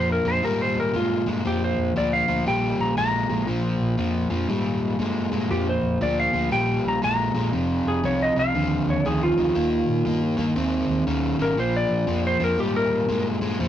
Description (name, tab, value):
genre	electric blues shuffle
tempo	118 BPM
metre	4/4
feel	swing 64% on 8ths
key	Bb mixolydian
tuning	A4 = 440 Hz
part	clean lap steel guitar	melody	0.0-13.2 s	F4 to Bb5	-24 LUFS	equal	none
part	crunchy overdriven guitar	riff	0.0-13.7 s	F2 to Db4	-24 LUFS	left 1 dB	none
part	vintage muted fingered electric bass	bass	0.0-13.7 s	F1 to Bb2	-28 LUFS	right 2 dB	none
room	light reverb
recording	rough rehearsal-room recording, tube saturation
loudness	-20 LUFS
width	side -11 dB against mid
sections	0.0-13.7 A section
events	electric slide guitar solo 0.0-13.7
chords	0.0 Bb7(no3); 7.5 F5; 9.6 Eb7; 11.6 Bb7